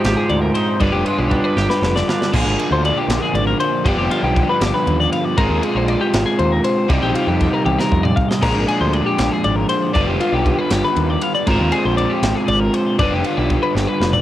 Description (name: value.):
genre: math rock and midwest emo.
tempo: 79 BPM (dotted quarters).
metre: 6/8.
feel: straight.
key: unclear.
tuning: A4 = 442 Hz.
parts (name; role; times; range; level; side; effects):
twangy electric guitar; accompaniment; 0.0-3.9 s; G2 to G4; -24 LUFS; right 3 dB; cassette tape.
twelve-string electric guitar; arpeggios; 0.0-14.2 s; F4 to F5; -21 LUFS; left 4 dB; wide subtle chorus, cassette tape, tape echo.
overdriven electric guitar; riff; 0.0-14.2 s; G2 to C5; -19 LUFS; right 1 dB; cassette tape.
growling picked electric bass; bass; 0.0-14.2 s; F1 to F2; -20 LUFS; equal; overdrive.
crisp fusion drum kit; drums; 0.0-14.2 s; crash cymbal, kick drum, ride cymbal, snare drum, toms; -24 LUFS; equal; cassette tape.
room: little or no reverb.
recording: home recording on cassette.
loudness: -15 LUFS.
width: side -13 dB against mid.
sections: 0.0-2.3 A section; 2.3-14.2 B section.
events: drum fill 1.6-2.3, 7.7-8.4, 13.8-14.2.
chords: 0.0 Fm9/Ab; 0.8 G7b9; 2.3 Bb7; 3.9 G7; 5.4 Fm9/Ab; 6.9 Cm9; 8.4 Bb7; 9.9 G7; 11.5 Fmadd9/Ab; 13.0 G7.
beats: 0.04 | 0.81 1.57 | 2.33 3.09 | 3.85 4.61 | 5.38 6.14 | 6.90 7.66 | 8.43 9.19 | 9.95 10.71 | 11.47 12.24 | 13.00 13.76.